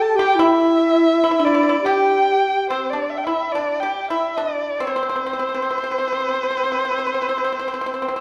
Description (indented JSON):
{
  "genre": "chinese traditional, Chinese chamber ensemble",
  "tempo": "72 BPM",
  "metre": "2/4",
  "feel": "rubato",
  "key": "G zhi mode",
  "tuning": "A4 = 440 Hz",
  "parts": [
    { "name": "warm erhu", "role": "melody", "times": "0.0-8.2 s", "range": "C5 to A5", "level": "-23 LUFS", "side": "equal", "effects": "none" },
    { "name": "bright reedy low xiao", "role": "second line", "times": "0.0-2.7 s", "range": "D4 to A4", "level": "-20 LUFS", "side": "equal", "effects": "none" },
    { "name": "pipa", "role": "second line", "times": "0.0-8.2 s", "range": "C4 to A4", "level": "-26 LUFS", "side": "equal", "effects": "none" }
  ],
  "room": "wet recital hall reverb, RT60 1.6 s",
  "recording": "dark, warm production",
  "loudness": "-20 LUFS",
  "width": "mono",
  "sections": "0.0-3.5 A section; 3.5-8.2 B section",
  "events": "none",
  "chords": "none"
}